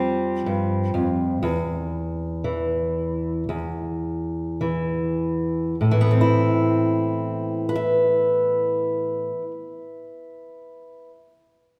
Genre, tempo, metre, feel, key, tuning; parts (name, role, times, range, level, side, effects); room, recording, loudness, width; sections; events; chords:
folk; 48-65 BPM; 4/4; straight; A minor; A4 = 440 Hz
fingerpicked steel-string acoustic guitar; accompaniment; 0.0-11.2 s; E2 to E5; -24 LUFS; equal
wet recital hall reverb, RT60 1.7 s; recorded in a church or concert hall; -23 LUFS; mono
0.0-5.8 A section; 5.8-10.8 B section
slowing down 0.0-5.8
0.0 Fsus2; 1.4 N.C.; 5.8 Amadd9